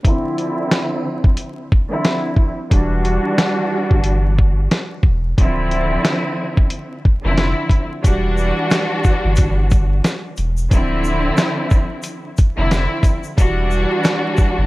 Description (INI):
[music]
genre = hip hop, boom-bap hip-hop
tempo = 90 BPM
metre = 4/4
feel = swing 59% on 16ths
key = E phrygian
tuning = A4 = 440 Hz
[part]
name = dark symphonic string section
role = accompaniment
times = 0.0-14.7 s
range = D3 to F#4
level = -20 LUFS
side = equal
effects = cassette tape, high-pass filter, low-pass filter
[part]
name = dusty soul sampler-style drum kit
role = drums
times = 0.0-14.6 s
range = hi-hat, kick drum, snare drum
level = -16 LUFS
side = equal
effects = none
[part]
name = warm sub bass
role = bass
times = 2.7-14.7 s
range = D1 to G1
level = -18 LUFS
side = equal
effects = none
[part]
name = tube shaker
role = percussion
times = 8.1-14.6 s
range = none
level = -40 LUFS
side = left 6 dB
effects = none
[sound]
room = digital ambience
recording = vinyl crackle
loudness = -15 LUFS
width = side -20 dB against mid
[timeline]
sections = 0.0-8.0 A section; 8.0-14.7 B section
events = filter sweep on string section 0.0-8.0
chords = 0.0 Dm9; 2.7 Em9; 5.4 Dm9; 8.0 Em9; 10.7 Dm9; 13.4 Em9